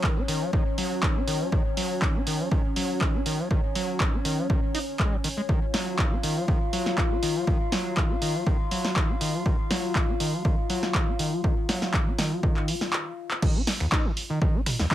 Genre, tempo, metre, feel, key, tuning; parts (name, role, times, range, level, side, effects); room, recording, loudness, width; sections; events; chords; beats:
acid house; 121 BPM; 4/4; straight; Eb minor; A4 = 437 Hz
warbly tape-like pad; sustained chords; 0.0-12.9 s; Db4 to F5; -32 LUFS; left 3 dB; chorus, built-in reverb, sidechain pumping
overdriven acid bass; riff; 0.0-14.9 s; Eb2 to Eb4; -30 LUFS; equal; distortion, analog chorus, sidechain pumping, digital delay
electronic kick drum; drums; 0.0-14.9 s; -25 LUFS; equal
punchy analog drum machine; drums; 0.0-14.9 s; crash cymbal, finger snaps, handclaps, hi-hat, snare drum, toms; -29 LUFS; equal
light reverb; -23 LUFS; side -13 dB against mid
0.0-13.4 A section; 13.4-14.9 B section
drum fill 12.9-13.4; stop 12.9-13.4; drop 13.4-14.9
0.0 Ebm; 13.4 N.C.
0.04 0.53 1.03 | 1.52 2.02 2.52 3.01 | 3.51 4.00 4.50 4.99 | 5.49 5.99 6.48 6.98 | 7.47 7.97 8.47 8.96 | 9.46 9.95 10.45 10.95 | 11.44 11.94 12.43 12.93 | 13.42 13.92 14.42 14.91